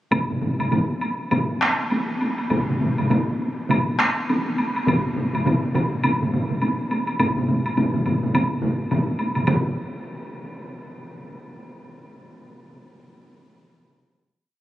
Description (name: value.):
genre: japanese traditional, taiko drum ensemble.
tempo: 103 BPM.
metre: 4/4.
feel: swing 60% on 16ths, uneven beats.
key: none.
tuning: none.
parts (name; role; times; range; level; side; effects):
taiko ensemble; percussion; 0.1-9.7 s; none; -25 LUFS; equal; none.
taiko ensemble; percussion; 0.1-10.0 s; none; -29 LUFS; left 2 dB; none.
taiko ensemble; percussion; 0.1-10.0 s; none; -25 LUFS; right 1 dB; none.
taiko ensemble; percussion; 0.1-9.7 s; none; -32 LUFS; left 1 dB; none.
woodblock; percussion; 0.1-9.7 s; none; -28 LUFS; equal; none.
room: wet huge ambient reverb, RT60 7.9 s.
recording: recorded on a phone in the room, club reverb.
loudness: -20 LUFS.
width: side -14 dB against mid.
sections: 0.1-9.5 A section; 9.5-11.7 final hit.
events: speeding up 0.1-11.7.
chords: none.